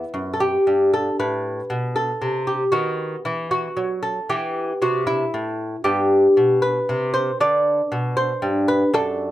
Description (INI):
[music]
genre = classical, baroque-style dance for lute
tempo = 78 BPM (dotted quarters)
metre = 12/8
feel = rubato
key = E minor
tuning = A4 = 440 Hz
[part]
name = lute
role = solo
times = 0.0-9.3 s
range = F#2 to D5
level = -18 LUFS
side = equal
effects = none
[sound]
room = light reverb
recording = none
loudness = -18 LUFS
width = side -14 dB against mid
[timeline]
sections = 0.0-9.3 A section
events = none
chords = 0.0 Em (rootless); 2.7 B/D#; 4.3 Em; 5.9 G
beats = 0.42 1.19 1.96 | 2.73 3.52 4.31 5.09 | 5.86 6.63 7.40 8.16 | 8.93